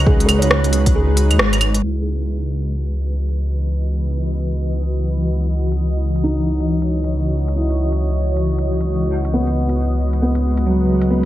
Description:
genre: future garage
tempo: 136 BPM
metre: 4/4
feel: swing 62% on 16ths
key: C# minor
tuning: A4 = 440 Hz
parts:
  - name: felt-muted upright piano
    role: accompaniment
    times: 0.0-11.3 s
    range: F#3 to C#5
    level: -23 LUFS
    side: right 1 dB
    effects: sidechain pumping, dub echo
  - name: granular cloud pad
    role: sustained chords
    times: 0.0-11.3 s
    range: E3 to D#5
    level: -23 LUFS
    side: left 1 dB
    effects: built-in reverb, sidechain pumping
  - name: dark detuned saw bass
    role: bass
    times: 0.0-11.3 s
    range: G#1 to D#2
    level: -18 LUFS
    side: equal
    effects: sidechain pumping
  - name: electronic kick drum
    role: drums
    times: 0.1-0.9 s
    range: none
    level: -16 LUFS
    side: equal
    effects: overdrive
  - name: organic electronic drum kit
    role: drums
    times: 0.2-11.1 s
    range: claves, hi-hat, rim click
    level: -19 LUFS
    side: right 1 dB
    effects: overdrive, low-pass filter on hats, low-pass filter on snare, low-pass filter on perc
room: moderate recital hall reverb, RT60 1.4 s, digital ambience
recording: vinyl crackle, low-pass filter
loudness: -16 LUFS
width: side -14 dB against mid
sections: 0.0-1.8 A section; 1.8-11.3 B section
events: kick drops out 0.9-1.8; band accent 1.4; filter sweep on ambient pad 1.8-11.3; filter sweep 1.8-11.3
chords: 0.0 G#m7; 1.8 C#m11; 8.9 G#m7/C#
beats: | 0.07 0.51 0.95 1.39 | 1.83 2.27 2.71 3.15 | 3.60 4.04 4.48 4.92 | 5.36 5.80 6.24 6.68 | 7.12 7.57 8.01 8.45 | 8.89 9.33 9.77 10.21 | 10.65 11.10

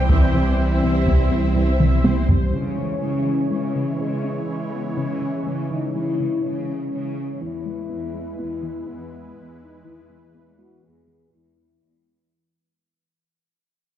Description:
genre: cinematic, hybrid orchestral and electronic film score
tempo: 123 BPM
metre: 5/4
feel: straight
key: C# minor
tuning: A4 = 440 Hz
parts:
  - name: rich symphonic violin section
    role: melody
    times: 0.0-2.2 s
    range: E4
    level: -32 LUFS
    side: left 2 dB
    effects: none
  - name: dark symphonic violin section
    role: second line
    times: 0.0-2.2 s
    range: C5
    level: -34 LUFS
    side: left 2 dB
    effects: none
  - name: rich symphonic viola section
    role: accompaniment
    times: 0.0-2.5 s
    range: C5 to G5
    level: -31 LUFS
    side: right 1 dB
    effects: none
  - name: dark French horn section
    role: sustained chords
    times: 0.0-12.3 s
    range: G#3 to G#4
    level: -28 LUFS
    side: left 3 dB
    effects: none
  - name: sweeping resonant pad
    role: sustained chords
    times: 0.0-12.3 s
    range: E3 to C#5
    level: -28 LUFS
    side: right 1 dB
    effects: chorus
  - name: rich symphonic cello section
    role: bass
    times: 0.0-12.2 s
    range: E2 to C4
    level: -30 LUFS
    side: right 3 dB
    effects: none
  - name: saturated sub bass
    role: bass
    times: 0.0-2.5 s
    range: C2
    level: -21 LUFS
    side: equal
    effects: none
  - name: clear trombone section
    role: sustained chords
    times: 0.1-1.7 s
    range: E3 to G3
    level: -33 LUFS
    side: right 5 dB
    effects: none
  - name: soft round pluck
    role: arpeggios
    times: 0.1-11.7 s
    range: C3 to E4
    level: -29 LUFS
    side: left 2 dB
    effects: chorus, tape echo
  - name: rich symphonic double bass section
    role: bass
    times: 0.1-2.4 s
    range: C2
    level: -26 LUFS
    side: right 2 dB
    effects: none
  - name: solo taiko drums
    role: drums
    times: 0.1-2.5 s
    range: none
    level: -20 LUFS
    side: equal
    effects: none
room: wet scoring stage reverb, RT60 1.6 s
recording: dark, warm production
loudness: -20 LUFS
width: side -11 dB against mid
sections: 0.0-2.5 A section; 2.5-12.3 B section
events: drum fill 1.8-2.5; fade-out 2.5-12.3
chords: 0.0 C; 2.5 C#m; 7.4 E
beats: | 0.09 0.58 1.07 1.55 2.04 | 2.53 3.02 3.51 3.99 4.48 | 4.97 5.46 5.95 6.43 6.92 | 7.41 7.90 8.38 8.87 9.36 | 9.85 10.34 10.82 11.31 11.80

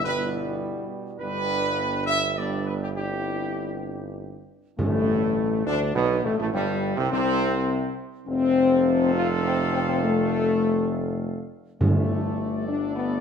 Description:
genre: classical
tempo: 103 BPM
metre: 3/4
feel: straight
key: G major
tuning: A4 = 439 Hz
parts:
  - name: warm trumpet section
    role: melody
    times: 0.0-13.2 s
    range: G3 to F5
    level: -30 LUFS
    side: right 1 dB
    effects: none
  - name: clear trombone section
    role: sustained chords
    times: 0.0-13.2 s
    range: G2 to A3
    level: -32 LUFS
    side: right 5 dB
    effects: none
  - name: mellow French horn section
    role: sustained chords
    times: 0.0-13.2 s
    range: G3 to F4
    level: -25 LUFS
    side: left 4 dB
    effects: none
  - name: warm tuba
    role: bass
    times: 0.0-13.2 s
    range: F1 to D2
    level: -29 LUFS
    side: right 4 dB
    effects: none
  - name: timpani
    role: percussion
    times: 0.0-0.3, 4.8-5.6, 11.8-12.6 s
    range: G2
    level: -26 LUFS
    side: right 1 dB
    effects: none
room: moderate recital hall reverb, RT60 1.5 s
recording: none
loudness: -22 LUFS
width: side -7 dB against mid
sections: 0.0-4.8 A section; 4.8-13.2 B section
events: none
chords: 0.0 Em/G; 1.2 G; 3.0 C/G; 4.8 Asus24; 6.5 C5/G; 8.3 F; 11.8 Gsus2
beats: 0.05 0.62 | 1.20 1.77 2.37 | 2.97 3.58 4.18 | 4.79 5.37 5.95 | 6.54 7.12 7.70 | 8.27 8.84 9.43 | 10.02 10.61 11.21 | 11.80 12.38 12.96

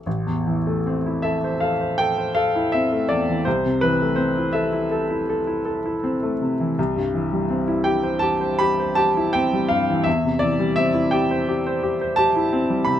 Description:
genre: classical, romantic nocturne for solo piano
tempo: 55 BPM (dotted quarters)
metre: 9/8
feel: rubato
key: A minor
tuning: A4 = 438 Hz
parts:
  - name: bright baby grand piano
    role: solo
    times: 0.0-13.0 s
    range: A1 to B5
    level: -19 LUFS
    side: equal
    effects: none
room: light reverb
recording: close, detailed microphones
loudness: -19 LUFS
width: side -10 dB against mid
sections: 0.1-13.0 A section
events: none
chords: 0.1 Am; 3.5 Am/C; 6.8 C; 10.1 C/E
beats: | 0.06 1.24 2.36 | 3.46 4.55 5.66 | 6.77 7.86 8.97 | 10.06 11.13 12.18

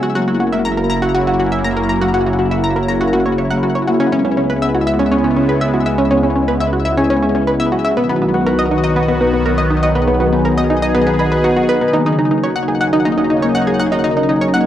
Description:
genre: ambient, sequencer-driven space music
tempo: 121 BPM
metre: 4/4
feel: straight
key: unclear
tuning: A4 = 439 Hz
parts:
  - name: sweeping resonant pad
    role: sustained chords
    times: 0.0-14.7 s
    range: C#3 to G#4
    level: -16 LUFS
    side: equal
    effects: chorus, cassette tape
  - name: Celtic harp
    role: arpeggios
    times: 0.0-14.7 s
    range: A#3 to D#5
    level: -22 LUFS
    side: left 2 dB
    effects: auto-pan, low-pass filter, cassette tape, ping-pong delay
  - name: analog pluck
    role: riff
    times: 0.0-14.6 s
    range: B3 to A#5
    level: -17 LUFS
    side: equal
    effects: chorus, cassette tape, ping-pong delay
  - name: fat analog bass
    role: bass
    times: 0.0-14.7 s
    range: F#1 to C#2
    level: -25 LUFS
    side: equal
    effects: none
room: wet small room reverb, RT60 0.5 s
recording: home recording on cassette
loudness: -13 LUFS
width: side -11 dB against mid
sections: 0.0-11.9 A section; 11.9-14.7 B section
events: none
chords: 0.0 F#7; 4.0 C#m7; 8.0 B; 11.9 D#m7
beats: | 0.04 0.53 1.03 1.52 | 2.02 2.52 3.01 3.51 | 4.00 4.50 5.00 5.49 | 5.99 6.48 6.98 7.47 | 7.97 8.47 8.96 9.46 | 9.95 10.45 10.95 11.44 | 11.94 12.43 12.93 13.43 | 13.92 14.42

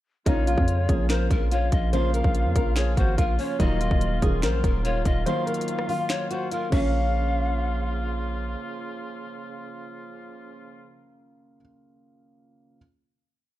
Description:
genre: hip hop, trap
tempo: 144 BPM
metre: 4/4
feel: half-time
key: Bb minor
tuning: A4 = 440 Hz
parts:
  - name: flamenco guitar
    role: melody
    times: 0.3-8.1 s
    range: Db4 to C5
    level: -29 LUFS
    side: left 2 dB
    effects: digital delay
  - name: breathy pan flute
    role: second line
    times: 0.3-8.1 s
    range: Bb4 to F5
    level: -32 LUFS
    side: left 3 dB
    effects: digital delay
  - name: dark grand piano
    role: accompaniment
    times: 0.3-12.8 s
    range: Db3 to F4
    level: -31 LUFS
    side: right 1 dB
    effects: none
  - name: warm woodwind section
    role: sustained chords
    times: 0.3-11.0 s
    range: Db3 to F4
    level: -36 LUFS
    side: right 2 dB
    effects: none
  - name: hard-hitting 808-style bass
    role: bass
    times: 0.3-8.6 s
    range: Eb1 to F2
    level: -25 LUFS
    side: equal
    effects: none
  - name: trap drum kit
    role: drums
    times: 0.3-6.8 s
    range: crash cymbal, finger snaps, hi-hat, kick drum, rim click, snare drum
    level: -25 LUFS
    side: equal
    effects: none
room: little or no reverb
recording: dark, warm production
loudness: -22 LUFS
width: side -14 dB against mid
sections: 0.3-6.9 hook; 6.9-10.3 final hit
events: break 5.3-6.9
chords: 0.3 Bbm; 3.6 Ebmadd9; 6.7 Bbm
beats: | 0.26 0.68 1.10 1.51 | 1.93 2.35 2.76 3.18 | 3.60 4.01 4.43 4.85 | 5.26 5.68 6.10 6.51 | 6.93 7.35 7.76 8.18 | 8.60 9.01 9.43 9.85

